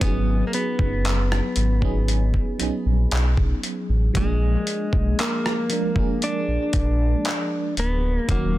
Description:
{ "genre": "contemporary R&B", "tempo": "58 BPM", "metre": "4/4", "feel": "straight", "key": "unclear", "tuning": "A4 = 440 Hz", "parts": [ { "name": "direct-recorded clean electric guitar", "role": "melody", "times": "0.0-8.6 s", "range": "G#3 to D4", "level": "-27 LUFS", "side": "left 1 dB", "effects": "digital delay" }, { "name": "FM electric piano with tremolo", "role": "accompaniment", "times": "0.0-8.6 s", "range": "D#3 to A#4", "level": "-28 LUFS", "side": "right 2 dB", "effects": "phaser" }, { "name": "sub bass with octave", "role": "bass", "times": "0.0-8.6 s", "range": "D1 to B1", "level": "-21 LUFS", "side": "equal", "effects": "none" }, { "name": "dusty soul sampler-style drum kit", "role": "drums", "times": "0.0-8.5 s", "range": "handclaps, hi-hat, kick drum, rim click", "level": "-24 LUFS", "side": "equal", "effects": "overdrive" } ], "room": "little or no reverb", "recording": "dense, heavily limited modern master", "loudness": "-20 LUFS", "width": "side -15 dB against mid", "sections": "0.0-8.6 A section", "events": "none", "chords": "0.0 C#9sus4; 4.1 A#7", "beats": "| 0.01 1.04 2.08 3.11 | 4.15 5.18 6.22 7.25 | 8.29" }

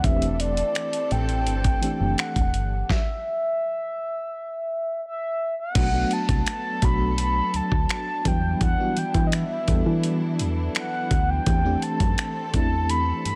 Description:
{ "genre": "contemporary R&B", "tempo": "84 BPM", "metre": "4/4", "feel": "straight", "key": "E minor", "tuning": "A4 = 442 Hz", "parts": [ { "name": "mellow horn-like synth lead", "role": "melody", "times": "0.0-13.4 s", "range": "D5 to B5", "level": "-30 LUFS", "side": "equal", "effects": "chorus, digital delay" }, { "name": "FM electric piano with tremolo", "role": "accompaniment", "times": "0.0-13.4 s", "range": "E3 to A4", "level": "-32 LUFS", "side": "equal", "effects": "none" }, { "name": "dark studio string section", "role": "sustained chords", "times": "0.0-13.4 s", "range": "E3 to A4", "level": "-36 LUFS", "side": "equal", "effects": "none" }, { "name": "solid FM bass", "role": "bass", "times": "0.0-13.3 s", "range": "E1 to E3", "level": "-27 LUFS", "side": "equal", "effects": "none" }, { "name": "dusty soul sampler-style drum kit", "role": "drums", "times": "0.0-13.4 s", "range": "crash cymbal, finger snaps, hi-hat, kick drum, snare drum", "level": "-27 LUFS", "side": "equal", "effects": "vintage 12-bit sampler grit" } ], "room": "little or no reverb", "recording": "none", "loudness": "-24 LUFS", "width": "mono", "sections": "0.0-5.8 A section; 5.8-13.4 B section", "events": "stop 2.9-5.8", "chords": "0.0 C69/E; 2.9 N.C.; 5.8 Bm7; 8.3 Em9; 11.5 C69/E", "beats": "| 0.04 0.75 1.47 2.18 | 2.90 3.61 4.33 5.04 | 5.75 6.47 7.18 7.90 | 8.61 9.32 10.04 10.75 | 11.47 12.18 12.90" }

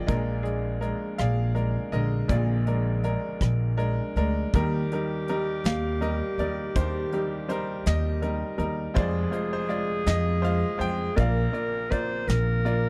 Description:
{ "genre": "acoustic folk-pop ballad", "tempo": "54 BPM (dotted quarters)", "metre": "6/8", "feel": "straight", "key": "Eb major", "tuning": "A4 = 438 Hz", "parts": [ { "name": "bright grand piano", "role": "melody", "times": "0.0-12.9 s", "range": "F1 to G5", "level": "-31 LUFS", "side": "equal", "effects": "none" }, { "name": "upright bass", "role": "bass", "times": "0.1-12.8 s", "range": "Bb1 to F2", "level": "-28 LUFS", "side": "equal", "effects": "none" }, { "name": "soft brush drum kit", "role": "drums", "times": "0.1-12.8 s", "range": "hi-hat, kick drum, rim click, snare drum", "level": "-27 LUFS", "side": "equal", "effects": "none" }, { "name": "warm clarinet", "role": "second line", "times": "4.5-12.9 s", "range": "G4 to C5", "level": "-34 LUFS", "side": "equal", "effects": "none" } ], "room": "little or no reverb", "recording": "dry, close 1970s-style studio recording", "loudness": "-27 LUFS", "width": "mono", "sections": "0.0-4.5 A section; 4.5-12.9 B section", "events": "none", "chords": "0.1 Bb7; 4.5 Eb; 9.0 Fm; 11.2 Bb", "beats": "| 0.08 1.18 | 2.29 3.40 | 4.53 5.64 | 6.75 7.86 | 8.96 10.06 | 11.17 12.28" }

